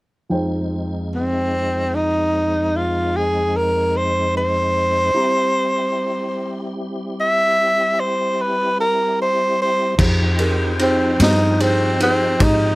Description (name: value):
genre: slow blues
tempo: 50 BPM (dotted quarters)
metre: 12/8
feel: straight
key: F minor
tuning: A4 = 440 Hz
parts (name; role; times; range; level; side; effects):
- dark concert grand piano; accompaniment; 0.3-12.7 s; F3 to Bb5; -24 LUFS; right 1 dB; none
- mellow tonewheel organ; sustained chords; 0.3-12.8 s; F2 to G5; -24 LUFS; equal; chorus vibrato, fast rotary speaker
- breathy tenor saxophone; melody; 1.1-12.8 s; C4 to E5; -18 LUFS; equal; none
- vintage muted fingered electric bass; bass; 10.0-12.8 s; F2 to Ab2; -19 LUFS; equal; none
- raw garage drum kit; drums; 10.0-12.6 s; crash cymbal, kick drum, ride cymbal, snare drum; -21 LUFS; equal; none
room: light reverb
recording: none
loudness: -16 LUFS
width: side -20 dB against mid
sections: 0.3-10.0 A section; 10.0-12.8 B section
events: tenor saxophone solo 10.0-12.8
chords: 0.3 Fm7; 5.2 C7; 10.0 Fm7